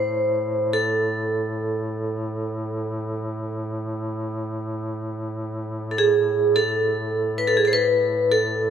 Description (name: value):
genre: caucasian folk, Caucasian lament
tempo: 52 BPM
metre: 4/4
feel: rubato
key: A harmonic minor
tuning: A4 = 440 Hz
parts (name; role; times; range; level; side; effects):
- vibraphone with hard mallets; melody; 0.0-8.7 s; G#4 to C5; -20 LUFS; right 1 dB; none
- warm duduk; drone; 0.0-8.7 s; A2; -28 LUFS; equal; none
room: moderate concert hall reverb, RT60 2.2 s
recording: none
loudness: -21 LUFS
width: side -8 dB against mid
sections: 0.0-8.7 A section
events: none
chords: none